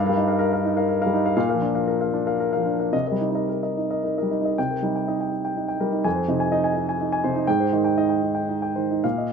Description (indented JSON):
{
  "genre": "neoclassical minimalist piano",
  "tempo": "105-130 BPM",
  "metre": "3/4",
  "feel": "rubato",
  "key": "C minor",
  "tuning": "A4 = 440 Hz",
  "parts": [
    { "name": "warm grand piano", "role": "solo", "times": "0.0-9.3 s", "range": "F2 to Ab5", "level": "-20 LUFS", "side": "equal", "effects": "none" }
  ],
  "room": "moderate studio reverb, RT60 0.7 s",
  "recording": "band playing live in one room",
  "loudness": "-20 LUFS",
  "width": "side -6 dB against mid",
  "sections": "0.0-4.6 A section; 4.6-9.3 B section",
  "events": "none",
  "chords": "0.0 Ebadd9/G; 1.4 Bb; 2.9 Cm7; 6.1 Fm7; 7.5 Abmaj7",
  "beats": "0.42 0.90 | 1.38 1.87 2.39 | 2.93 3.49 4.04 | 4.57 5.08 5.58 | 6.05 6.52 7.00 | 7.47 7.96 8.48 | 9.03"
}